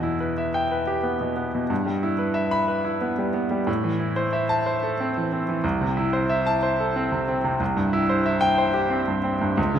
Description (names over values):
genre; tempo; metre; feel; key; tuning
classical, romantic character piece for solo piano; 91 BPM; 3/4; rubato; unclear; A4 = 439 Hz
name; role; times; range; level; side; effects
clear grand piano; solo; 0.0-9.8 s; C2 to B5; -21 LUFS; equal; none
room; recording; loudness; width
wet concert hall reverb, RT60 2.0 s; none; -21 LUFS; side -9 dB against mid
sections
0.0-9.8 A section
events
none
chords
0.0 Em; 1.7 Em/G; 3.7 Am; 5.6 Am/C; 7.6 C